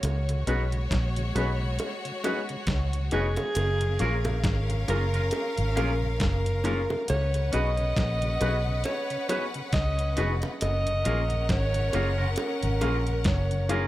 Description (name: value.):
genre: lovers rock reggae.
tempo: 68 BPM.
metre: 4/4.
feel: swing 58% on 16ths.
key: F# major.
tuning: A4 = 440 Hz.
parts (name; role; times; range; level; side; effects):
clear studio string section; second line; 0.0-13.9 s; G#3 to F#5; -35 LUFS; left 2 dB; none.
vintage muted fingered electric bass; bass; 0.0-13.9 s; E#1 to C#2; -27 LUFS; equal; none.
detuned 8-bit digital drum machine; drums; 0.0-13.9 s; hi-hat, kick drum, snare drum; -30 LUFS; equal; none.
bongos; percussion; 0.0-13.9 s; none; -37 LUFS; right 2 dB; dub echo.
mellow tonewheel organ; accompaniment; 0.3-13.8 s; F#2 to E#4; -39 LUFS; left 1 dB; none.
warm baby grand piano; accompaniment; 0.5-13.8 s; A#3 to G#4; -35 LUFS; left 4 dB; dub echo.
twangy electric guitar; stabs; 0.5-13.8 s; C#4 to B4; -35 LUFS; right 2 dB; vibrato effect.
mellow alto saxophone; melody; 3.1-13.9 s; G#4 to D#5; -31 LUFS; right 1 dB; tape echo.
room: light reverb.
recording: none.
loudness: -24 LUFS.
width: side -15 dB against mid.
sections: 0.0-13.9 A section.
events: none.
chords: 0.0 C#7sus4; 3.6 F#maj7; 7.1 C#7sus4; 10.6 F#maj7.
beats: | 0.03 0.91 1.79 2.67 | 3.56 4.44 5.32 6.20 | 7.08 7.97 8.85 9.73 | 10.61 11.49 12.38 13.26.